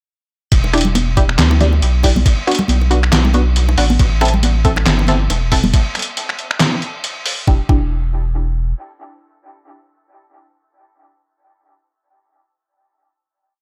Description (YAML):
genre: deep dubstep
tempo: 138 BPM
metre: 4/4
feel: swing 57% on 16ths, half-time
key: E minor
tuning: A4 = 440 Hz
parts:
  - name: saturated sub bass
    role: bass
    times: 0.5-8.7 s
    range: E1 to D2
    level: -18 LUFS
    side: equal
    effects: tube saturation
  - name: electronic kick drum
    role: drums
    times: 0.5-7.8 s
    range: none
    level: -16 LUFS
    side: equal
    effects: small room ambience
  - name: trip hop sampler-style drum kit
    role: drums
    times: 0.5-7.4 s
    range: crash cymbal, finger snaps, handclaps, hi-hat, snare drum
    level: -21 LUFS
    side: equal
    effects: overdrive, small room ambience
  - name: bongos and congas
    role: percussion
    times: 0.6-5.7 s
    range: none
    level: -24 LUFS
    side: equal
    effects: dub echo
  - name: filtered dub chord stab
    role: stabs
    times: 0.7-11.5 s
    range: B3 to A4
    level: -24 LUFS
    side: equal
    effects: chorus, phaser, dub echo
room: little or no reverb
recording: none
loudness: -15 LUFS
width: mono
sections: 0.5-7.5 drop; 7.5-11.0 final chord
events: drop 0.5-7.5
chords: 0.5 Em7; 2.3 Bm; 4.0 Am; 5.7 N.C.; 7.5 Em7